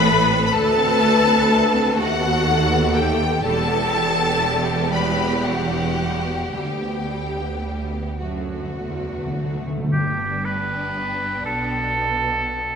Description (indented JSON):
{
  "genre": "classical",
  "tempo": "34-42 BPM (dotted quarters)",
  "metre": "6/8",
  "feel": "rubato",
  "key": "G major",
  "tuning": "A4 = 441 Hz",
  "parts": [
    { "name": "rich symphonic violin section", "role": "melody", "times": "0.0-12.8 s", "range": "F#5 to B5", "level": "-23 LUFS", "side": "left 4 dB", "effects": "none" },
    { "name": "rich symphonic violin section", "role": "second line", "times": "0.0-12.8 s", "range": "G3 to B4", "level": "-26 LUFS", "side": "left 3 dB", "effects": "none" },
    { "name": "rich symphonic viola section", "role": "accompaniment", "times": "0.0-12.8 s", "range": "B3 to B4", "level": "-25 LUFS", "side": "right 1 dB", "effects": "none" },
    { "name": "clear symphonic cello section", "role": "bass", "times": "0.0-12.8 s", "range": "D2 to B2", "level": "-26 LUFS", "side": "right 1 dB", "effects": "none" },
    { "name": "rich symphonic double bass section", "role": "bass", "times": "0.0-12.8 s", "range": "E1 to D#2", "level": "-26 LUFS", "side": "right 4 dB", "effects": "none" },
    { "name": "timpani", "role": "percussion", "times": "6.5-11.4 s", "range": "G2 to D3", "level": "-27 LUFS", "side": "left 1 dB", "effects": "none" },
    { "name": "clear oboe", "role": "second line", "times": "9.9-12.8 s", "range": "G4 to B4", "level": "-22 LUFS", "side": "right 2 dB", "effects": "none" }
  ],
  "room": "wet scoring stage reverb, RT60 1.6 s",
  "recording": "minimal, uncompressed stereo recording",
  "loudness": "-18 LUFS",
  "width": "side -6 dB against mid",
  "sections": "0.0-9.9 A section; 9.9-12.8 B section",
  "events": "timpani fill 8.2-9.9",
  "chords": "0.0 Am; 0.5 D5; 2.0 B7/D#; 3.4 Em; 6.5 G/D; 8.2 D; 9.9 G"
}